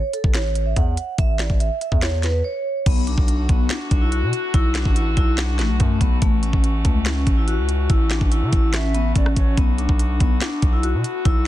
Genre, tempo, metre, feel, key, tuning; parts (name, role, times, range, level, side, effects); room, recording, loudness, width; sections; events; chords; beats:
hip hop, trap; 143 BPM; 4/4; half-time; B minor; A4 = 440 Hz
vibraphone with soft mallets; melody; 0.0-11.4 s; A3 to F#5; -25 LUFS; left 1 dB
distorted 808-style bass; bass; 0.0-11.5 s; A1 to C#3; -21 LUFS; equal; distortion
trap drum kit; drums; 0.1-11.4 s; crash cymbal, finger snaps, hi-hat, kick drum, rim click, snare drum; -19 LUFS; equal; vintage 12-bit sampler grit, soft clipping on snare
muted French horn section; sustained chords; 2.9-11.5 s; D3 to F#4; -31 LUFS; right 1 dB
breathy mellow large pan pipes; second line; 8.7-9.6 s; C#5 to E5; -32 LUFS; right 7 dB; digital delay
small room ambience; dense, heavily limited modern master; -17 LUFS; side -14 dB against mid
0.0-2.9 A section; 2.9-11.5 B section
break 2.4-2.9
0.0 A; 2.9 Bm7; 6.2 A6; 9.6 Bm7
0.34 0.76 | 1.18 1.60 2.02 2.44 | 2.86 3.28 3.70 4.12 | 4.54 4.96 5.38 5.80 | 6.22 6.64 7.06 7.48 | 7.90 8.32 8.74 9.15 | 9.57 9.99 10.41 10.83 | 11.25